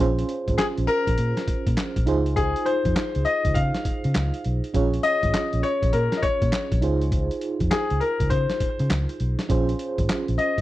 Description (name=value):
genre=R&B, new jack swing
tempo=101 BPM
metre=4/4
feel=swing 64% on 16ths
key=Bb minor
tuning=A4 = 440 Hz
part: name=FM electric piano with tremolo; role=accompaniment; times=0.0-10.6 s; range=Db4 to Db5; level=-28 LUFS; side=right 4 dB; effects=none
part: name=vintage muted fingered electric bass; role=bass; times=0.0-10.6 s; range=Ab1 to Db3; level=-24 LUFS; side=equal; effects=none
part: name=boom bap sampler-style drum kit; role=drums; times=0.2-10.6 s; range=handclaps, hi-hat, kick drum, snare drum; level=-26 LUFS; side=equal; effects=none
part: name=warm concert grand piano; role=melody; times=0.6-10.6 s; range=Ab4 to F5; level=-24 LUFS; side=left 4 dB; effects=none
room=little or no reverb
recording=dry, close 1970s-style studio recording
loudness=-21 LUFS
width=side -15 dB against mid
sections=0.0-10.6 A section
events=none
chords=0.0 Bbm7; 2.1 Dbmaj7; 4.7 Bbm7; 6.8 Dbmaj7; 9.5 Bbm7